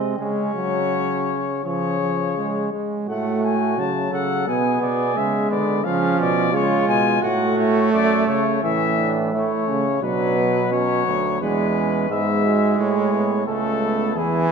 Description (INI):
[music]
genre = classical, imitative canzona for brass ensemble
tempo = 86 BPM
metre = 4/4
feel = straight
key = F# minor, A major from 8.6 s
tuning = A4 = 440 Hz
[part]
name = mellow flugelhorn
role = second line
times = 0.0-14.5 s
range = A3 to A4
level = -27 LUFS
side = right 4 dB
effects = none
[part]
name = clear trombone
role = accompaniment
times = 0.0-14.5 s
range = E3 to B3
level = -22 LUFS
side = right 3 dB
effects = none
[part]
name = warm euphonium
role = bass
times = 0.0-14.5 s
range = C#2 to D3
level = -25 LUFS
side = right 2 dB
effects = none
[part]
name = warm trumpet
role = melody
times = 0.2-14.5 s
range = G#4 to A5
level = -24 LUFS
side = left 9 dB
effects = none
[sound]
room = wet concert hall reverb, RT60 2.0 s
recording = none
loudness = -18 LUFS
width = side -6 dB against mid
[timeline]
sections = 0.0-3.1 A section; 3.1-8.6 B section; 8.6-14.5 C section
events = none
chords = 0.2 C#sus4; 1.6 C#; 3.1 F#m/A; 4.5 G#dim/B; 5.9 C#; 7.2 F#m/A; 8.6 A; 10.0 Bm; 11.4 E; 12.8 A